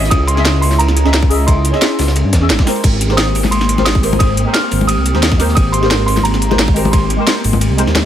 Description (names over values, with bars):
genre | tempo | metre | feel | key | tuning
liquid drum and bass | 176 BPM | 4/4 | straight | Ab major | A4 = 440 Hz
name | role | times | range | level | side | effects
warm baby grand piano | melody | 0.0-7.6 s | Bb5 to F6 | -20 LUFS | right 2 dB | ping-pong delay
deep mellow chord stab | accompaniment | 0.0-7.8 s | Ab3 to Fb5 | -20 LUFS | equal | chorus, phaser, dub echo
airy breathy pad | sustained chords | 0.0-8.1 s | Bb3 to G4 | -23 LUFS | right 1 dB | chorus, sidechain pumping
dark detuned saw bass | bass | 0.0-8.1 s | Ab1 to G2 | -15 LUFS | equal | tube saturation
crunchy breakbeat drum kit | drums | 0.0-8.0 s | ride cymbal, snare drum | -26 LUFS | equal | high-pass filter on cymbals, high-pass filter on snare, high-pass filter on room
drum and bass drum kit | drums | 0.1-8.0 s | crash cymbal, hi-hat, ride cymbal, snare drum | -18 LUFS | equal | none
electronic kick drum | drums | 0.1-7.0 s | none | -13 LUFS | equal | overdrive
congas | percussion | 3.4-8.0 s | none | -20 LUFS | left 6 dB | none
room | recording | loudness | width
light reverb, small room ambience | none | -11 LUFS | side -10 dB against mid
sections
0.0-8.1 A section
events
none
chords
0.0 Dbmadd9; 2.8 Abmaj9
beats
| 0.11 0.45 0.79 1.14 | 1.48 1.82 2.16 2.50 | 2.84 3.18 3.52 3.86 | 4.20 4.54 4.88 5.23 | 5.57 5.91 6.25 6.59 | 6.93 7.27 7.61 7.95